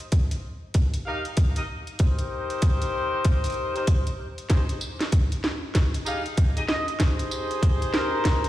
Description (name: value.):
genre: glitch hop.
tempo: 96 BPM.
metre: 4/4.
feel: swing 62% on 16ths.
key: F minor.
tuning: A4 = 441 Hz.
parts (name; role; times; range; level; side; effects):
drum and bass drum kit; drums; 0.0-8.5 s; hi-hat, snare drum, tambourine; -30 LUFS; right 1 dB; none.
electronic kick drum; drums; 0.1-8.4 s; none; -20 LUFS; equal; none.
warm horn section; stabs; 1.1-8.5 s; Eb4 to F5; -29 LUFS; left 1 dB; sidechain pumping, tape echo.
sync lead; melody; 6.7-8.5 s; Bb4 to Eb5; -30 LUFS; equal; chorus, tape echo.
room: light reverb, digital ambience.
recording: played on a big sound system in a bare room, stone room reverb.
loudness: -22 LUFS.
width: side -14 dB against mid.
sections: 0.0-8.5 A section.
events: build-up 0.0-8.5; filter sweep on horn section 0.0-8.5; drum fill 4.5-8.5.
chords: 0.0 Eb6; 4.5 Fm7 (rootless).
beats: 0.12 0.75 1.37 | 2.00 2.62 3.25 3.87 | 4.50 5.12 5.75 6.37 | 7.00 7.62 8.25.